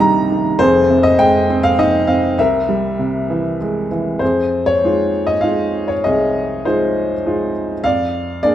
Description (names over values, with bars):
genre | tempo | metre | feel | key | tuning
classical, lyrical solo piano | 100 BPM | 3/4 | rubato | F minor | A4 = 441 Hz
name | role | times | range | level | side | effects
clear upright piano | solo | 0.0-8.5 s | F1 to Bb5 | -14 LUFS | equal | none
room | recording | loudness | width
moderate recital hall reverb, RT60 1.4 s | dark, warm production | -14 LUFS | side -11 dB against mid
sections
0.0-4.2 A section; 4.2-8.5 B section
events
none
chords
0.0 Cm; 0.6 Fm7; 2.4 C7b13; 4.2 Fm7; 7.8 Bb7/F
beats
0.01 | 0.59 1.19 1.79 | 2.38 2.98 3.60 | 4.22 4.83 5.44 | 6.04 6.64 7.25 | 7.84 8.43